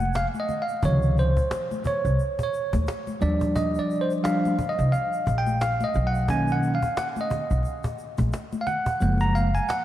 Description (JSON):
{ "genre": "hip hop, jazz-hop", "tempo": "88 BPM", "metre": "4/4", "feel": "swing 58% on 16ths", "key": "unclear", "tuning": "A4 = 441 Hz", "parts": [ { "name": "bell-like tine electric piano", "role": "accompaniment", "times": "0.0-9.8 s", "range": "C3 to Bb5", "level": "-25 LUFS", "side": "right 1 dB", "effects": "fast stereo tremolo" }, { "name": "upright bass", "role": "bass", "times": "0.0-9.6 s", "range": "F1 to Eb2", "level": "-24 LUFS", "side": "equal", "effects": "none" }, { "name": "cajon", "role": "drums", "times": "0.0-9.8 s", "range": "none", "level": "-34 LUFS", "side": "equal", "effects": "none" }, { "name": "congas and egg shaker", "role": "percussion", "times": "0.0-9.8 s", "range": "none", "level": "-37 LUFS", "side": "left 4 dB", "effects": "none" } ], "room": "moderate church reverb, RT60 3.6 s", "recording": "dreamy mix soaked in reverb, vinyl crackle", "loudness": "-22 LUFS", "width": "side -13 dB against mid", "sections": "0.0-9.8 A section", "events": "tine electric piano solo 0.0-9.8; kick muted 9.0-9.8", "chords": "0.0 Gbmaj7(no3); 0.8 Dbmaj9; 3.2 Ebmaj9; 5.9 Cbmaj9; 9.0 Gbmaj9", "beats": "0.15 | 0.83 1.51 2.19 2.88 | 3.56 4.24 4.92 5.60 | 6.28 6.97 7.65 8.33 | 9.01 9.69" }